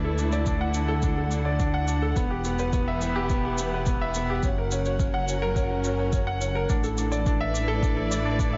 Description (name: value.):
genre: piano and strings electronica.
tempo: 106 BPM.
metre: 4/4.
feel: straight.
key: D major.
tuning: A4 = 440 Hz.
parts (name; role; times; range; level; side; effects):
dark studio string section; sustained chords; 0.0-8.6 s; D3 to F#5; -35 LUFS; equal; sidechain pumping.
clear upright piano; riff; 0.0-8.6 s; B3 to F#5; -30 LUFS; equal; digital delay.
dark detuned saw bass; bass; 0.0-8.6 s; E1 to D2; -30 LUFS; equal; sidechain pumping.
shaker; drums; 0.2-8.5 s; none; -40 LUFS; equal; none.
electronic kick drum; drums; 0.5-8.5 s; none; -29 LUFS; equal; none.
room: light reverb.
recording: nothing above 7.7 kHz.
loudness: -26 LUFS.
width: mono.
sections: 0.0-8.6 A section.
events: none.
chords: 0.0 D; 2.2 Em; 4.4 F#; 6.7 Asus4.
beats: 0.47 1.04 1.60 | 2.17 2.73 3.30 3.87 | 4.43 5.00 5.57 6.13 | 6.70 7.26 7.83 8.39.